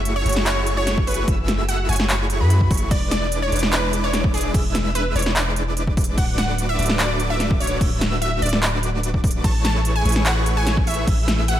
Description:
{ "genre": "future bass", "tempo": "147 BPM", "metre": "4/4", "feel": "half-time", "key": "F# minor", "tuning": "A4 = 442 Hz", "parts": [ { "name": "wide unison pluck", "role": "melody", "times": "0.0-11.6 s", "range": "G#4 to A5", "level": "-26 LUFS", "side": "equal", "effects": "sidechain pumping, digital delay" }, { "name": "airy dreamy lead", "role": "arpeggios", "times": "0.0-11.6 s", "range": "B5 to E6", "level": "-31 LUFS", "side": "left 1 dB", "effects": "chorus, sidechain pumping, digital delay" }, { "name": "supersaw chords", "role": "riff", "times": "0.0-11.6 s", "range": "G#3 to E5", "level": "-26 LUFS", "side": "right 1 dB", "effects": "sidechain pumping" }, { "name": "long sustained 808-style bass", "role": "bass", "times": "0.0-11.6 s", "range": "D1 to F#2", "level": "-22 LUFS", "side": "equal", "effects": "sidechain pumping" }, { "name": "big-room dance drum kit", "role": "drums", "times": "0.1-11.6 s", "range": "crash cymbal, handclaps, hi-hat, snare drum", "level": "-24 LUFS", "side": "equal", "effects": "overdrive" }, { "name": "electronic kick drum", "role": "drums", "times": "1.0-11.2 s", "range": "none", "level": "-21 LUFS", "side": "equal", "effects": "overdrive" } ], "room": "little or no reverb", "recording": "none", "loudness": "-18 LUFS", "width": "side -11 dB against mid", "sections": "0.0-11.6 A section", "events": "none", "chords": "0.0 F#m9; 2.9 E7; 6.2 D6; 9.4 Amaj9" }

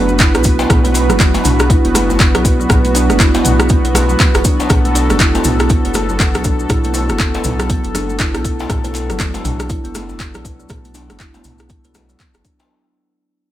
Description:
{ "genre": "afro house", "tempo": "120 BPM", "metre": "4/4", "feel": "swing 59% on 16ths", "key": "B minor pentatonic", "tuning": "A4 = 442 Hz", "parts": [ { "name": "warm analog pad", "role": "sustained chords", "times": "0.0-12.7 s", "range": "B3 to B4", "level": "-21 LUFS", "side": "right 2 dB", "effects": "chorus, sidechain pumping" }, { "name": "kalimba", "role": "arpeggios", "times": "0.0-12.7 s", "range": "F#3 to B4", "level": "-20 LUFS", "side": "equal", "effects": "sidechain pumping, tape echo" }, { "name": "warm sub bass", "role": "bass", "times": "0.0-12.4 s", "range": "F#1 to B1", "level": "-19 LUFS", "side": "equal", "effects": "sidechain pumping" }, { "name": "congas", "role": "percussion", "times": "0.1-12.6 s", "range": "none", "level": "-26 LUFS", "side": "right 1 dB", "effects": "none" }, { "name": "maracas", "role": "percussion", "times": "0.1-12.7 s", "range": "none", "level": "-25 LUFS", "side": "left 4 dB", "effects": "none" }, { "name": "deep house drum kit", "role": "drums", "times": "0.2-12.7 s", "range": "handclaps, hi-hat, rim click, toms", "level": "-18 LUFS", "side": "equal", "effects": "overdrive, small room ambience" }, { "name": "electronic kick drum", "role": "drums", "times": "0.2-12.6 s", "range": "none", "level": "-15 LUFS", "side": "equal", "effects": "overdrive, small room ambience" }, { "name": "djembe", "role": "percussion", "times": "0.2-12.7 s", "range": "none", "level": "-26 LUFS", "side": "left 2 dB", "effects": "none" } ], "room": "studio reverb", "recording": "none", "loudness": "-11 LUFS", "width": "side -13 dB against mid", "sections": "0.0-12.7 A section", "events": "drop 0.0-12.7; fade-out 4.7-12.7", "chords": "0.0 Bm7" }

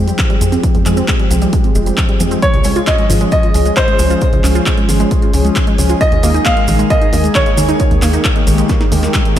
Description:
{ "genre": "uplifting trance", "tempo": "134 BPM", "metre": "4/4", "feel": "straight", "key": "unclear", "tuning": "A4 = 440 Hz", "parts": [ { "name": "lush unison pad", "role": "sustained chords", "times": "0.0-9.4 s", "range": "Eb3 to Ab4", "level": "-18 LUFS", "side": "left 1 dB", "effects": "chorus, vintage 12-bit sampler grit, sidechain pumping" }, { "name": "plucky analog bass", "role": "bass", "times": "0.0-9.4 s", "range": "F1 to F2", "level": "-15 LUFS", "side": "equal", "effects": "sidechain pumping" }, { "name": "wide unison pluck", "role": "arpeggios", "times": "0.1-9.4 s", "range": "Eb3 to F4", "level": "-20 LUFS", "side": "right 3 dB", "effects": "sidechain pumping, ping-pong delay" }, { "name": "punchy analog drum machine", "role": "drums", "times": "0.1-9.4 s", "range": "handclaps, hi-hat, snare drum", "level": "-21 LUFS", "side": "equal", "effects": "overdrive, small room ambience" }, { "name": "maracas", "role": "percussion", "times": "0.1-9.4 s", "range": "none", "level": "-27 LUFS", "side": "right 3 dB", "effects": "none" }, { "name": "electronic kick drum", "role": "drums", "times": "0.2-9.2 s", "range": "none", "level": "-15 LUFS", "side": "equal", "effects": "small room ambience" }, { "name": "clear baby grand piano", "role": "second line", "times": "2.4-9.4 s", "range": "C5 to F5", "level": "-18 LUFS", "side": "equal", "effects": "diffuse ambient delay" } ], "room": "light reverb", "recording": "none", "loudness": "-10 LUFS", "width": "side -11 dB against mid", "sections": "0.0-9.4 A section", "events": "filter sweep on analog synth pad 0.0-9.4; drum fill 8.7-9.4", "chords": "0.0 Fmadd9; 2.4 Db; 6.0 Ebsus4" }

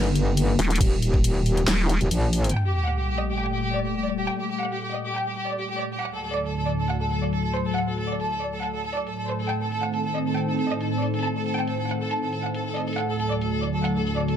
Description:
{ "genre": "heavy wobble dubstep", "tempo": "138 BPM", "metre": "4/4", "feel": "half-time", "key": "G harmonic minor", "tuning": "A4 = 435 Hz", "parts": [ { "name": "lush unison pad", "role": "sustained chords", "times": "0.0-14.4 s", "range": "D2 to G4", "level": "-28 LUFS", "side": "equal", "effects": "chorus, phaser, sidechain pumping" }, { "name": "metallic wobble bass", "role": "bass", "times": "0.0-2.5 s", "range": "Eb1 to Bb1", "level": "-21 LUFS", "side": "equal", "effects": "chorus, overdrive" }, { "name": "dubstep drum kit", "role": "drums", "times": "0.2-14.4 s", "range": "crash cymbal, handclaps, hi-hat, snare drum", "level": "-30 LUFS", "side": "left 1 dB", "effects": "low-pass filter on hats, low-pass filter on cymbals, low-pass filter on snare" }, { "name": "vowel-sweep wobble bass", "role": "bass", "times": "0.6-2.0 s", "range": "Eb1", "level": "-21 LUFS", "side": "equal", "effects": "chorus, overdrive" }, { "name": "electronic kick drum", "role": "drums", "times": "0.8-1.2 s", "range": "none", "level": "-21 LUFS", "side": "equal", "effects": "none" }, { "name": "clear studio violin section", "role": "melody", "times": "2.5-14.4 s", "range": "G4 to A5", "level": "-28 LUFS", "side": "equal", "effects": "ping-pong delay" }, { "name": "sub drop", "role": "sound effects", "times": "2.5-4.3 s", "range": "none", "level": "-27 LUFS", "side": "equal", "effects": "none" } ], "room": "light reverb", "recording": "dark, warm production", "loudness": "-23 LUFS", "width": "side -9 dB against mid", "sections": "0.0-2.5 A section; 2.5-14.4 B section", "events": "drop 0.0-2.5; kick drops out 2.1-2.5; impact 2.5-4.3; filter sweep on analog synth pad 2.5-14.4", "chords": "0.0 Eb; 2.5 Gmadd9; 6.0 D; 9.5 Adim; 13.0 D" }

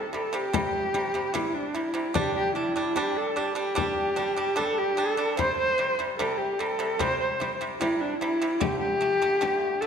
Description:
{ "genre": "mongolian traditional, Mongolian folk", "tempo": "74 BPM", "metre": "4/4", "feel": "straight", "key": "C gong mode", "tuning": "A4 = 440 Hz", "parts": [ { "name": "rich horsehead fiddle", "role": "melody", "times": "0.0-9.9 s", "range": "D4 to C5", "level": "-26 LUFS", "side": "equal", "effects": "slapback echo" }, { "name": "pipa", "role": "arpeggios", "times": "0.0-9.9 s", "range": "C3 to D4", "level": "-30 LUFS", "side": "right 2 dB", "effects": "none" }, { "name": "frame drum", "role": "percussion", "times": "0.1-9.9 s", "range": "none", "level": "-34 LUFS", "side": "left 5 dB", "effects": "none" } ], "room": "wet concert hall reverb, RT60 1.9 s", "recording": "none", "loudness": "-24 LUFS", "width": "side -7 dB against mid", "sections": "0.0-9.9 A section", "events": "none", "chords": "0.0 C5; 2.2 G5; 5.4 C5; 8.6 D5" }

